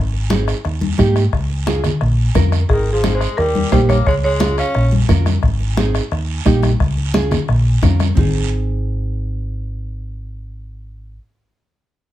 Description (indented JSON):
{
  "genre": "latin, cumbia",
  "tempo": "175 BPM",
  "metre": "4/4",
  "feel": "straight",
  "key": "Ab major",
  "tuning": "A4 = 440 Hz",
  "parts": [
    { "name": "hollow-body short-scale fingered electric bass", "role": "bass", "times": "0.0-11.2 s", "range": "Ab1 to Ab2", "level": "-18 LUFS", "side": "equal", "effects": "none" },
    { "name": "congas", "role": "percussion", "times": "0.1-8.2 s", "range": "none", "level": "-22 LUFS", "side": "left 2 dB", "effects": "none" },
    { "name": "nylon-string guitar", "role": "accompaniment", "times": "0.3-11.2 s", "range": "Bb3 to Bb4", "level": "-21 LUFS", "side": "right 4 dB", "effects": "none" },
    { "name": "bombo", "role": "percussion", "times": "0.3-8.2 s", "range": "none", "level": "-20 LUFS", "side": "left 2 dB", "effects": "none" },
    { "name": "guiro", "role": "percussion", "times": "0.3-8.2 s", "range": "none", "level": "-31 LUFS", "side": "right 7 dB", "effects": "none" },
    { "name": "buzzing marimba with medium hard mallets", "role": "melody", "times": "2.7-4.9 s", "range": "Ab4 to F5", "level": "-20 LUFS", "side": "right 2 dB", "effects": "none" },
    { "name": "growling tenor saxophone", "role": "second line", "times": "2.7-4.9 s", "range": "Eb3 to Db4", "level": "-23 LUFS", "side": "left 3 dB", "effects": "none" }
  ],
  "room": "moderate studio reverb, RT60 0.5 s",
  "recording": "heard from further back in the room",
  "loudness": "-14 LUFS",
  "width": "side -13 dB against mid",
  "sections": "0.0-8.2 A section; 8.2-10.9 B section",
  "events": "none",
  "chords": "0.0 Ab; 0.6 Eb; 1.3 Db; 2.0 Bbm; 2.7 Ab; 3.4 Eb; 4.1 Db; 4.7 Bbm; 5.4 Ab; 6.1 Eb; 6.8 Db; 7.5 Bbm; 8.2 Ab"
}